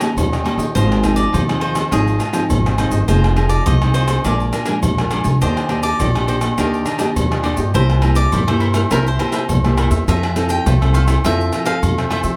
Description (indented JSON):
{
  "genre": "samba and choro",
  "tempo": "103 BPM",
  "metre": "4/4",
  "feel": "straight",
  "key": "unclear",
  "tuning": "A4 = 440 Hz",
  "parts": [
    { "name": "cavaquinho", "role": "melody", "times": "0.0-12.2 s", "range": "Ab4 to G5", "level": "-27 LUFS", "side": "equal", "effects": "none" },
    { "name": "cavaquinho", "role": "accompaniment", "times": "0.0-12.4 s", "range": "D4 to Ab5", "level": "-28 LUFS", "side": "equal", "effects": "none" },
    { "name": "nylon-string guitar", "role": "accompaniment", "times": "0.0-12.4 s", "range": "F2 to A4", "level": "-24 LUFS", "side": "equal", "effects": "none" },
    { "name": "agogo bells, maracas, pandeiro, tamborim and surdo", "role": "percussion", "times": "0.0-12.4 s", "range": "none", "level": "-22 LUFS", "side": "equal", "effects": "none" },
    { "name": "upright bass", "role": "bass", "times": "0.2-12.4 s", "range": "F1 to F3", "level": "-20 LUFS", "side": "equal", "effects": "none" }
  ],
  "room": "light reverb",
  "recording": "close, detailed microphones",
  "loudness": "-17 LUFS",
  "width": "mono",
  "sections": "0.0-12.4 A section",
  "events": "none",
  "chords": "0.0 Eb7; 0.8 Ab6; 3.1 Fm7; 4.3 Bb7; 5.4 Ebmaj7; 7.8 C7; 10.1 Fmaj7",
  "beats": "0.17 | 0.75 1.34 1.92 2.50 | 3.08 3.67 4.25 4.83 | 5.42 6.00 6.58 7.17 | 7.75 8.33 8.92 9.50 | 10.08 10.67 11.25 11.83"
}